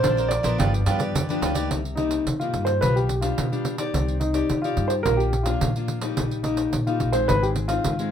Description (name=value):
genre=samba and choro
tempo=107 BPM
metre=4/4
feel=straight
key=C minor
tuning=A4 = 440 Hz
part: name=dark grand piano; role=melody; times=0.0-8.1 s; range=Eb4 to D5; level=-25 LUFS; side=equal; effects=none
part: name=cavaquinho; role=accompaniment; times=0.0-1.7 s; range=D4 to D5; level=-29 LUFS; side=right 5 dB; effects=none
part: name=nylon-string guitar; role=accompaniment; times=0.0-8.1 s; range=G2 to D5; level=-29 LUFS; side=left 6 dB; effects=none
part: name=upright bass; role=bass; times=0.0-8.1 s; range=G1 to C3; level=-26 LUFS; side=equal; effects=none
part: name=pandeiro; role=percussion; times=0.0-8.1 s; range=none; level=-28 LUFS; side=right 2 dB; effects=none
room=light reverb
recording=minimal, uncompressed stereo recording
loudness=-21 LUFS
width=side -9 dB against mid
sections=0.0-1.7 A section; 1.7-8.1 B section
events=none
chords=0.0 Bbadd9; 0.6 G7; 1.7 Cm7; 2.8 G7/B; 3.9 Cmadd9; 5.1 Bb; 6.2 Eb/Bb; 7.3 Ab